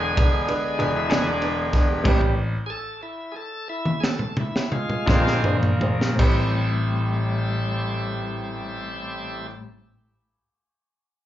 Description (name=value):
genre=slow blues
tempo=52-64 BPM (dotted quarters)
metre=12/8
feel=straight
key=A minor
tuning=A4 = 440 Hz
part: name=warm upright piano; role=accompaniment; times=0.0-9.5 s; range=C4 to D5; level=-30 LUFS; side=right 4 dB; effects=slapback echo
part: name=bright tonewheel organ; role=sustained chords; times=0.0-9.5 s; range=D3 to A4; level=-27 LUFS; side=equal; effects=overdrive, slow rotary speaker
part: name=bright concert grand piano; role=bass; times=0.0-9.5 s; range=E1 to Bb1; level=-25 LUFS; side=equal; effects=none
part: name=crunchy breakbeat drum kit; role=drums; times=0.2-6.4 s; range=crash cymbal, kick drum, ride cymbal, snare drum, toms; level=-23 LUFS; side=equal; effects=none
part: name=semi-hollow electric guitar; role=accompaniment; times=1.1-9.8 s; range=A2 to G#4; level=-30 LUFS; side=left 6 dB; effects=tremolo, slapback echo
room=light reverb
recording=live gig heard through the venue's PA, club reverb, nothing above 7.5 kHz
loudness=-20 LUFS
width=side -12 dB against mid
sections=0.0-6.2 A section; 6.2-10.8 B section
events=tonewheel organ solo 0.0-6.2; slowing down 0.8-6.2; drum fill 2.1-6.2; stop 2.1-5.1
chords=0.0 E7; 2.1 Am7; 5.1 Bb7; 6.2 Am7